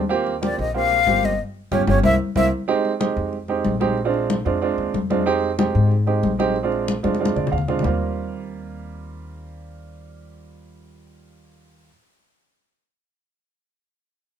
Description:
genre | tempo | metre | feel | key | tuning
Afro-Cuban jazz | 186 BPM | 4/4 | straight | Eb major | A4 = 440 Hz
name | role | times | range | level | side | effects
upright bass | bass | 0.0-11.9 s | G1 to Ab2 | -25 LUFS | left 1 dB | none
warm upright piano | accompaniment | 0.1-11.9 s | G3 to F5 | -22 LUFS | right 6 dB | none
congas | percussion | 0.1-7.9 s | none | -24 LUFS | left 5 dB | none
breathy concert flute | melody | 0.4-2.5 s | Db5 to F5 | -19 LUFS | left 3 dB | none
room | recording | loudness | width
light reverb | minimal, uncompressed stereo recording | -18 LUFS | side -8 dB against mid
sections
0.0-2.7 A section; 2.7-7.8 B section; 7.8-10.4 C section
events
band accent 1.4-2.7; drum fill 7.0-7.8; upright piano fill 7.2-7.8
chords
0.1 Eb6; 1.4 Db; 2.0 C7; 2.7 Fm7; 4.0 Bb7; 5.3 Fm7; 6.6 Bb7; 7.8 Eb6

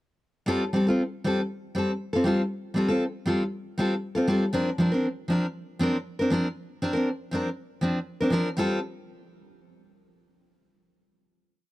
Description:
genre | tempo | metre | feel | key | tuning
highlife | 118 BPM | 4/4 | straight | F major | A4 = 438 Hz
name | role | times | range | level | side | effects
picked steel-string acoustic guitar | solo | 0.5-8.8 s | F3 to Bb4 | -24 LUFS | equal | none
room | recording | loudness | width
small room ambience | dry, close 1970s-style studio recording | -24 LUFS | side -17 dB against mid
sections
0.5-8.6 groove; 8.6-10.6 final chord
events
none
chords
0.5 Fadd9; 4.5 Bbadd9; 8.6 Fadd9

